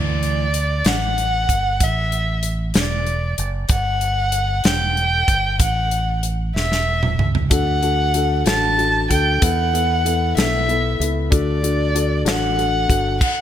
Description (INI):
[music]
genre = six-eight pop ballad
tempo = 63 BPM (dotted quarters)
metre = 6/8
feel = straight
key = D major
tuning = A4 = 439 Hz
[part]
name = dark violin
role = melody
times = 0.0-13.4 s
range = D5 to A5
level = -21 LUFS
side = equal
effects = digital delay
[part]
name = electric guitar at the edge of break-up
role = arpeggios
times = 0.0-0.5 s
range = E3 to A3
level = -29 LUFS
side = right 10 dB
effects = digital delay
[part]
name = fingered electric bass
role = bass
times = 0.0-13.2 s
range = E1 to E2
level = -22 LUFS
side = right 1 dB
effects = none
[part]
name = modern studio drum kit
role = drums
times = 0.2-13.4 s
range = crash cymbal, hi-hat, kick drum, snare drum, toms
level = -20 LUFS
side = equal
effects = gated reverb
[part]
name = felt-muted upright piano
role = accompaniment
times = 7.5-13.2 s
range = B3 to A4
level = -23 LUFS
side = left 6 dB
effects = none
[sound]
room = light reverb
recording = bright 1980s-style digital production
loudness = -16 LUFS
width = side -10 dB against mid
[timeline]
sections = 0.0-13.4 A section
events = drum fill 6.6-7.5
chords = 0.0 D; 1.8 Asus4; 3.7 Emadd9; 5.6 A; 7.5 D; 9.4 Asus2/E; 11.3 D